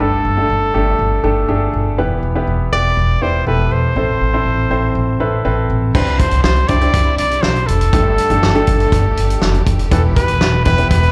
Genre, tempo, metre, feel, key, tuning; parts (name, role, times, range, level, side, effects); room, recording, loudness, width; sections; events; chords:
piano-driven pop; 121 BPM; 4/4; straight; C major; A4 = 441 Hz
clear trumpet; melody; 0.0-11.1 s; A4 to D5; -21 LUFS; equal; plate reverb, slapback echo, delay
clear baby grand piano; accompaniment; 0.0-11.1 s; G2 to D5; -22 LUFS; equal; plate reverb, slapback echo
upright bass; bass; 0.0-11.1 s; E1 to C2; -19 LUFS; equal
bright studio string section; sustained chords; 5.9-11.1 s; C3 to B4; -30 LUFS; equal
loose indie drum kit; drums; 5.9-11.1 s; crash cymbal, hi-hat, kick drum, snare drum; -20 LUFS; equal
light reverb; live gig heard through the venue's PA, club reverb; -15 LUFS; mono
0.0-5.9 A section; 5.9-11.1 B section
0.0 Gsus2; 2.0 Em; 4.0 Amadd9; 5.9 Cadd9; 7.9 Gsus2; 9.9 Em